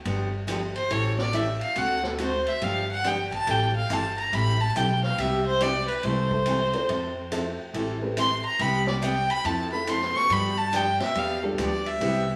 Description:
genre	country, western swing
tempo	140 BPM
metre	4/4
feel	swing 65% on 8ths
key	unclear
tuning	A4 = 441 Hz
part	picked steel-string acoustic guitar	accompaniment	0.1-12.2 s	C3 to A4	-33 LUFS	equal	none
part	upright bass	bass	0.1-12.4 s	G1 to G2	-32 LUFS	equal	none
part	vintage drum kit	drums	0.1-12.1 s	hi-hat, kick drum, ride cymbal, snare drum	-38 LUFS	equal	none
part	clear fiddle	second line	0.8-12.4 s	A4 to Db6	-28 LUFS	equal	none
part	dark upright piano	accompaniment	6.3-12.4 s	E3 to C5	-34 LUFS	equal	none
room	wet stone room reverb, RT60 1.1 s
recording	band playing live in one room, studio ambience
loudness	-26 LUFS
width	mono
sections	0.0-12.4 A section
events	fiddle solo 0.0-12.4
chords	0.1 G7; 0.9 A7; 1.8 D7; 2.6 G7; 3.5 Am7; 5.2 Cmaj7; 6.0 Am/C; 6.9 Fmaj7; 7.7 Am7; 8.6 Cmaj7; 9.4 Fmaj7; 10.3 G7

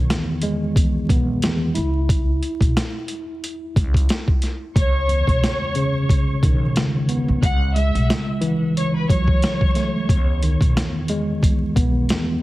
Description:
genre	hip hop, boom-bap hip-hop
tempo	90 BPM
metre	4/4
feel	swing 55% on 16ths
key	unclear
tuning	A4 = 436 Hz
part	mellow tine electric piano	accompaniment	0.0-12.4 s	C#2 to E4	-22 LUFS	equal	medium stereo tremolo, cassette tape, high-pass filter, low-pass filter
part	upright bass	bass	0.0-12.1 s	B1 to C#2	-22 LUFS	equal	none
part	boom bap sampler-style drum kit	drums	0.1-12.3 s	hi-hat, kick drum, snare drum	-19 LUFS	equal	none
part	rich studio violin section	melody	4.8-10.1 s	B4 to F#6	-26 LUFS	equal	high-pass filter, low-pass filter, tape echo
room	light reverb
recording	heavily compressed radio sound, multiband compression, vinyl crackle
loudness	-17 LUFS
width	side -17 dB against mid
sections	0.0-12.4 A section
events	none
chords	0.0 Emaj7; 1.8 Bsus4 (rootless); 4.8 C#m9; 7.4 F#m9; 10.1 Emaj7

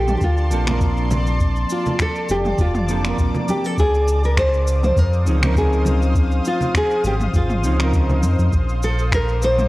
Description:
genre	sunset chillout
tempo	101 BPM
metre	4/4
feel	swing 54% on 16ths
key	Bb major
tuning	A4 = 444 Hz
part	nylon-string guitar	melody	0.0-9.7 s	F4 to C5	-22 LUFS	equal	digital delay
part	shimmering ambient pad	sustained chords	0.0-9.7 s	C5 to Eb6	-29 LUFS	equal	chorus, built-in reverb
part	round analog bass	bass	0.0-9.7 s	F1 to F2	-19 LUFS	equal	none
part	deep house drum kit	drums	0.1-9.7 s	finger snaps, shaker, toms	-27 LUFS	equal	overdrive
part	congas	percussion	0.1-9.7 s	none	-27 LUFS	right 1 dB	none
part	electronic kick drum	drums	0.2-9.3 s	none	-20 LUFS	equal	overdrive
part	mellow electric guitar	accompaniment	0.5-8.5 s	F3 to Bb4	-25 LUFS	equal	auto-pan, tape echo
room	light reverb, digital ambience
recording	worn, warbling old tape, cassette tape, warbly pitch drift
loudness	-16 LUFS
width	side -18 dB against mid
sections	0.0-9.7 A section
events	none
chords	0.0 Bbmaj9; 3.8 Dbmaj9; 8.5 Bbmaj9

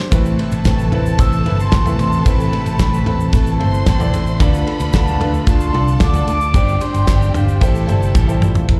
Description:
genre	piano-driven pop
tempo	112 BPM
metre	4/4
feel	straight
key	A minor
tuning	A4 = 440 Hz
part	clear concert grand piano	accompaniment	0.0-8.8 s	G2 to F5	-28 LUFS	equal	none
part	chorused pulse-width pad	sustained chords	0.0-8.7 s	C3 to A4	-31 LUFS	equal	none
part	warm symphonic violin section	second line	0.1-8.7 s	G4 to C6	-32 LUFS	equal	slapback echo, digital delay
part	picked steel-string acoustic guitar	riff	0.1-8.7 s	A2 to C5	-27 LUFS	equal	none
part	fingered electric bass	bass	0.1-8.8 s	G1 to D2	-19 LUFS	equal	none
part	damped 70s drum kit	drums	0.1-8.8 s	hi-hat, kick drum, ride cymbal, snare drum, toms	-19 LUFS	equal	none
part	egg shaker	percussion	0.1-8.7 s	none	-44 LUFS	equal	none
part	mellow horn-like synth lead	melody	0.7-8.8 s	E4 to E6	-27 LUFS	equal	chorus, slapback echo, digital delay
room	studio reverb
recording	live gig heard through the venue's PA, club reverb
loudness	-16 LUFS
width	mono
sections	0.0-8.7 A section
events	drum fill 8.2-8.7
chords	0.1 Amadd9; 4.4 Dm; 6.5 Gsus4; 7.6 Am7

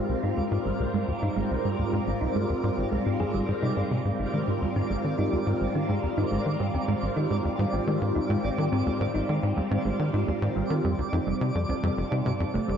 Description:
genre	ambient, sequencer-driven space music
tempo	106 BPM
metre	4/4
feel	straight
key	Ab lydian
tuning	A4 = 438 Hz
part	phased string machine	sustained chords	0.0-12.8 s	Ab2 to Bb4	-30 LUFS	left 1 dB	ensemble chorus, phaser
part	thumb-piano-like synth pluck	arpeggios	0.0-12.7 s	G2 to Ab4	-31 LUFS	moving between left 2 dB and right 6 dB	chorus, auto-pan, analog delay
part	twinkling granular texture	texture	0.0-12.8 s	D5	-37 LUFS	right 3 dB	built-in reverb
part	tight sequencer bass	riff	0.1-12.8 s	F1 to Eb3	-28 LUFS	equal	wide subtle chorus, analog delay
room	wet plate reverb, RT60 3.4 s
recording	worn, warbling old tape, cassette tape, warbly pitch drift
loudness	-24 LUFS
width	side -8 dB against mid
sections	0.0-12.8 A section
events	fade-in on synth texture 0.0-12.8; filter sweep on analog synth bass 0.0-12.8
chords	0.0 Ab; 10.8 F

